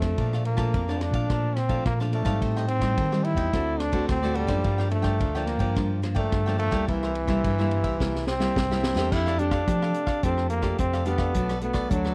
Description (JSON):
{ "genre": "samba and choro", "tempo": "107 BPM", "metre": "4/4", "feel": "straight", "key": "F major", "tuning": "A4 = 439 Hz", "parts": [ { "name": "brilliant trombone", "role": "melody", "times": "0.0-12.1 s", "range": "E3 to E4", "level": "-30 LUFS", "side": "equal", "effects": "none" }, { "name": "nylon-string guitar", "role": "accompaniment", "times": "0.0-12.1 s", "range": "F2 to G4", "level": "-33 LUFS", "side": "equal", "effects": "none" }, { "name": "mellow tine electric piano", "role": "bass", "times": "0.0-12.1 s", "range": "B1 to F3", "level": "-30 LUFS", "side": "equal", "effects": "none" }, { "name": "vintage drum kit", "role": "drums", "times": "0.0-12.1 s", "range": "crash cymbal, hi-hat, kick drum, ride cymbal, rim click, snare drum", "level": "-33 LUFS", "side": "equal", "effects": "none" }, { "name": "cavaquinho", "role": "accompaniment", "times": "0.2-12.1 s", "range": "D4 to A5", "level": "-39 LUFS", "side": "equal", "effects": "none" } ], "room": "little or no reverb", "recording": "dry, close 1970s-style studio recording", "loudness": "-25 LUFS", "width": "mono", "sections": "0.0-9.1 A section; 9.1-12.1 B section", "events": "drum fill 8.0-9.1", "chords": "0.2 Bbmaj7; 2.4 Am7b5; 3.5 D7; 4.7 Gm7; 6.9 C7; 9.1 F69; 11.4 Bm7" }